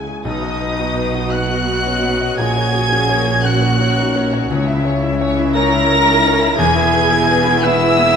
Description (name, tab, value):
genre	cinematic, emotional film score for orchestra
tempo	57 BPM (dotted quarters)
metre	6/8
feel	rubato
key	B major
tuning	A4 = 442 Hz
part	warm studio violin section	melody	0.0-8.2 s	D#6 to A#6	-21 LUFS	left 1 dB	none
part	warm studio violin section	second line	0.0-8.1 s	C#4 to G#5	-25 LUFS	left 3 dB	none
part	warm grand piano	accompaniment	0.0-8.2 s	A#1 to E5	-22 LUFS	equal	none
part	concert harp	arpeggios	0.0-8.2 s	A#2 to E6	-27 LUFS	left 10 dB	none
part	warm studio cello section	bass	0.0-8.2 s	C#2 to B2	-24 LUFS	right 1 dB	none
part	warm studio double bass section	bass	0.0-8.2 s	E1 to C#2	-23 LUFS	right 5 dB	none
part	concert flute	second line	0.2-8.2 s	D#5 to A#5	-22 LUFS	equal	none
part	dark studio viola section	accompaniment	0.2-8.2 s	D#4 to A#4	-22 LUFS	right 3 dB	none
part	warm French horn section	sustained chords	0.2-8.2 s	B3 to F#4	-22 LUFS	left 3 dB	none
part	warm oboe	second line	0.3-8.2 s	D#5 to A#5	-23 LUFS	equal	none
room	wet recital hall reverb, RT60 1.4 s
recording	none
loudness	-13 LUFS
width	side -7 dB against mid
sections	0.2-8.2 A section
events	none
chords	0.2 B; 2.4 F#/A#; 4.5 C#m; 6.6 E